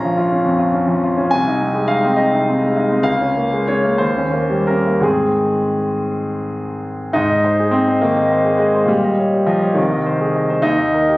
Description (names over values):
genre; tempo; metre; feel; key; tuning
classical, romantic character piece for solo piano; 54-72 BPM (dotted quarters); 6/8; rubato; Ab major; A4 = 440 Hz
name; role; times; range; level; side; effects
bright concert grand piano; solo; 0.0-11.2 s; Bb1 to Bb5; -14 LUFS; equal; none
room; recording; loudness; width
moderate recital hall reverb, RT60 1.3 s; recorded on a phone in the room, club reverb; -14 LUFS; side -20 dB against mid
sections
0.0-7.2 A section; 7.2-11.2 B section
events
none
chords
0.0 Bbm; 1.3 Ab/C; 3.1 Bbm7/Db; 4.0 Eb7; 5.0 Ab; 8.9 Eb7/Bb; 9.8 Ab/C; 10.7 Eb